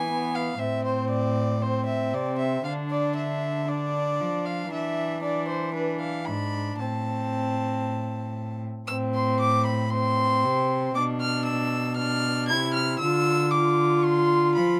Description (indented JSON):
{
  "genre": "classical, renaissance-style consort dance",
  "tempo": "116 BPM",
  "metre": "4/4",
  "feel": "straight",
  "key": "A harmonic minor",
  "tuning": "A4 = 440 Hz",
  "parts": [
    { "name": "warm violin", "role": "melody", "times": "0.0-14.8 s", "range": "B4 to G#6", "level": "-30 LUFS", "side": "equal", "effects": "none" },
    { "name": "warm viola", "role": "accompaniment", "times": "0.0-14.8 s", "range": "B3 to F4", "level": "-30 LUFS", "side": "equal", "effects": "none" },
    { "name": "rich cello", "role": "bass", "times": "0.0-14.8 s", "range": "G#2 to F3", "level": "-31 LUFS", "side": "equal", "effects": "none" }
  ],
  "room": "little or no reverb",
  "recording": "close, detailed microphones",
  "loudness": "-26 LUFS",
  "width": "mono",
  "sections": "0.0-8.9 A section; 8.9-14.8 A section",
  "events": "none",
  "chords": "0.0 E; 0.6 Am; 2.7 Dm; 4.7 E7; 6.8 Am; 11.0 Bdim; 13.0 Dm",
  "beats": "0.09 | 0.61 1.12 1.63 2.15 | 2.66 3.17 3.69 4.20 | 4.72 5.23 5.75 6.27 | 6.79 7.32 7.84 8.36 | 8.88 9.40 9.92 10.44 | 10.96 11.47 11.99 12.51 | 13.02 13.54 14.06 14.57"
}